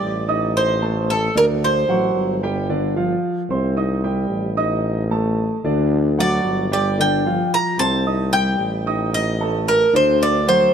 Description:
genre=latin, Cuban son and guajira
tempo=112 BPM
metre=4/4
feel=straight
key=unclear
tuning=A4 = 442 Hz
part: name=Cuban tres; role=melody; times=0.0-2.4, 6.2-10.7 s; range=A4 to Bb5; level=-19 LUFS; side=right 1 dB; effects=none
part: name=dark concert grand piano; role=arpeggios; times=0.0-10.7 s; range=D3 to Eb6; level=-22 LUFS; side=right 1 dB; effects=none
part: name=warm tuba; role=bass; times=0.0-10.7 s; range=G1 to D2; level=-22 LUFS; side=left 1 dB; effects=none
room=light reverb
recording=none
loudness=-17 LUFS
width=side -8 dB against mid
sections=0.0-10.7 A section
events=none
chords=0.0 Cm (rootless); 0.6 Adim; 1.6 D7; 2.7 G5; 3.8 Cm; 4.8 Asus4; 5.9 D; 7.0 G5; 8.1 Cm; 9.1 Cm13/A; 10.2 D7

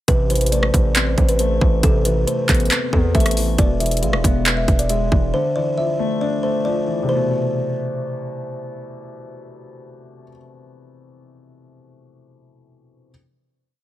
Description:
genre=hip hop, trap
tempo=137 BPM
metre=4/4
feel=half-time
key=A harmonic minor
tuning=A4 = 439 Hz
part: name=buzzing kalimba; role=melody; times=0.1-8.4 s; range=A4 to F5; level=-23 LUFS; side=right 1 dB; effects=digital delay
part: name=dark concert grand piano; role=accompaniment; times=0.1-13.1 s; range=B2 to B4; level=-25 LUFS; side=left 4 dB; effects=none
part: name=distorted 808-style bass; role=bass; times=0.1-5.3 s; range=E1 to E2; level=-20 LUFS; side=equal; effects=distortion
part: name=trap drum kit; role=drums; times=0.1-5.2 s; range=handclaps, hi-hat, kick drum, rim click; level=-18 LUFS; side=equal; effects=overdrive
room=small room ambience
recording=none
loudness=-16 LUFS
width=side -14 dB against mid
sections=0.1-7.1 hook; 7.1-10.6 final chord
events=none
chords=0.1 Amadd9; 3.6 E; 5.3 Dmadd9; 7.1 Amadd9

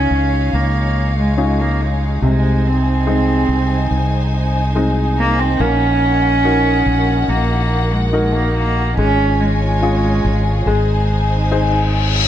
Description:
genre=pop ballad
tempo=71 BPM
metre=4/4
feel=straight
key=Db major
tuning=A4 = 441 Hz
part: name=warm cello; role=melody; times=0.0-11.1 s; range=Ab3 to Db4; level=-18 LUFS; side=right 2 dB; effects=none
part: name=clear baby grand piano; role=accompaniment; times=0.0-12.3 s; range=C3 to C5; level=-22 LUFS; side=left 2 dB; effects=none
part: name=warm studio string section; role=sustained chords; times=0.0-12.3 s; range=Eb4 to Ab5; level=-23 LUFS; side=left 1 dB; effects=none
part: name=fretless electric bass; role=bass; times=0.0-12.3 s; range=Ab1 to Db2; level=-17 LUFS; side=equal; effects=none
part: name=reverse cymbal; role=sound effects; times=11.7-12.3 s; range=none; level=-20 LUFS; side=left 6 dB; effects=none
room=light reverb, small room ambience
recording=dark, warm production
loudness=-14 LUFS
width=side -11 dB against mid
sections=0.0-12.3 A section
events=reverse cymbal 11.7-12.3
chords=0.0 Dbadd9; 2.2 Ab/C; 5.6 Ebm/Bb; 9.0 Db/Ab; 10.7 Ab

